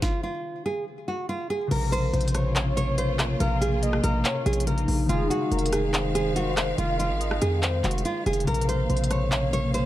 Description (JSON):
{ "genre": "hip hop, trap", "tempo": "142 BPM", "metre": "4/4", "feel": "half-time", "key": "Bb minor", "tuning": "A4 = 435 Hz", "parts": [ { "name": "nylon-string guitar", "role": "melody", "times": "0.0-9.9 s", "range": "F4 to Db5", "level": "-29 LUFS", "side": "right 1 dB", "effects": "ping-pong delay" }, { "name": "concert harp", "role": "accompaniment", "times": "0.0-9.9 s", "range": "C3 to Eb4", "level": "-30 LUFS", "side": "left 2 dB", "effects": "none" }, { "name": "trap drum kit", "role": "drums", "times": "0.0-9.8 s", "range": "crash cymbal, handclaps, hi-hat, kick drum, rim click, snare drum", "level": "-30 LUFS", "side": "equal", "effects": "none" }, { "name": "warm velvety synth lead", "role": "second line", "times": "1.7-9.9 s", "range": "Ab4 to F5", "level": "-32 LUFS", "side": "left 1 dB", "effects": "chorus, ping-pong delay" }, { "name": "clear symphonic string section", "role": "sustained chords", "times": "1.7-9.9 s", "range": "Bb2 to F5", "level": "-32 LUFS", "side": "equal", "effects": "none" }, { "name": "hard-hitting 808-style bass", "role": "bass", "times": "1.7-9.9 s", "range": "F1 to F2", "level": "-27 LUFS", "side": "equal", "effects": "none" } ], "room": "small room ambience", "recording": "dark, warm production", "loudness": "-23 LUFS", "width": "side -14 dB against mid", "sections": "0.0-1.7 A section; 1.7-9.9 B section", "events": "stop 0.0-1.7", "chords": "0.0 Fm7; 1.7 Bbmadd9; 5.1 Fm7; 8.5 Bbmadd9" }